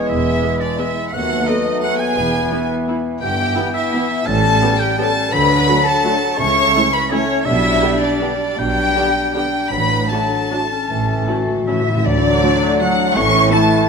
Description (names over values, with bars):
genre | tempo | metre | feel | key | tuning
classical, orchestral ballroom waltz | 146-185 BPM | 3/4 | rubato | D major from 3.2 s | A4 = 436 Hz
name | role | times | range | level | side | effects
warm chamber violin section | melody | 0.0-13.6 s | A4 to C#6 | -22 LUFS | left 3 dB | none
bright large flute ensemble | second line | 0.0-13.9 s | C#5 to C#6 | -23 LUFS | right 1 dB | none
clear oboe | second line | 0.0-13.9 s | C#5 to C#6 | -24 LUFS | right 1 dB | none
dark clarinet | second line | 0.0-13.9 s | B3 to F#4 | -25 LUFS | left 3 dB | none
warm symphonic violin section | second line | 0.0-13.9 s | C#4 to C#6 | -24 LUFS | left 5 dB | none
warm bassoon | accompaniment | 0.0-13.9 s | E3 to A3 | -25 LUFS | right 2 dB | none
bright trombone section | sustained chords | 0.0-13.9 s | A2 to B3 | -28 LUFS | right 4 dB | none
mellow French horn section | sustained chords | 0.0-13.9 s | A3 to B4 | -24 LUFS | left 6 dB | none
rich symphonic double bass section | bass | 0.1-13.5 s | E1 to D#2 | -24 LUFS | right 4 dB | none
warm symphonic cello section | bass | 0.1-13.9 s | D#2 to C#4 | -24 LUFS | right 3 dB | none
warm symphonic viola section | accompaniment | 0.4-13.6 s | A3 to A4 | -27 LUFS | right 2 dB | none
timpani | percussion | 4.3-4.8, 10.9-12.0 s | A2 | -25 LUFS | left 1 dB | none
room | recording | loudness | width
moderate scoring stage reverb, RT60 1.9 s | none | -14 LUFS | side -5 dB against mid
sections
0.0-12.1 A section; 12.1-13.9 B section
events
timpani fill 10.9-12.1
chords
0.0 E; 1.1 B7/D#; 2.2 E; 3.2 Em/G; 4.3 A9; 5.3 D; 6.4 A/C#; 7.5 G/B; 9.7 D/A; 10.9 A; 12.1 D; 13.2 A